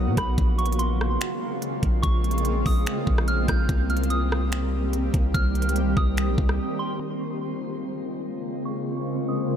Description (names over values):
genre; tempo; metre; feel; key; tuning
hip hop, atmospheric cloud-rap; 145 BPM; 4/4; half-time; Bb dorian; A4 = 440 Hz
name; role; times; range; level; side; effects
soft synth bell; melody; 0.0-9.6 s; B5 to G6; -32 LUFS; right 2 dB; chorus, low-pass filter, tape echo
shimmering ambient pad; sustained chords; 0.0-9.6 s; Db3 to G4; -27 LUFS; equal; chorus, built-in reverb, sidechain pumping, low-pass filter
long sustained 808-style bass; bass; 0.0-6.6 s; Bb1 to B2; -24 LUFS; equal; none
trap drum kit; drums; 0.2-6.6 s; finger snaps, hi-hat, kick drum, rim click; -25 LUFS; equal; none
room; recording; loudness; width
digital ambience; none; -22 LUFS; side -9 dB against mid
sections
0.0-7.0 A section; 7.0-9.6 B section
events
break 6.6-7.0; filter sweep 7.0-9.6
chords
0.4 Bbm9; 3.7 Cm7; 7.0 Bbm9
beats
| 0.38 0.79 1.21 1.62 | 2.04 2.45 2.86 3.28 | 3.69 4.10 4.52 4.93 | 5.34 5.76 6.17 6.59 | 7.00 7.41 7.83 8.24 | 8.66 9.07 9.48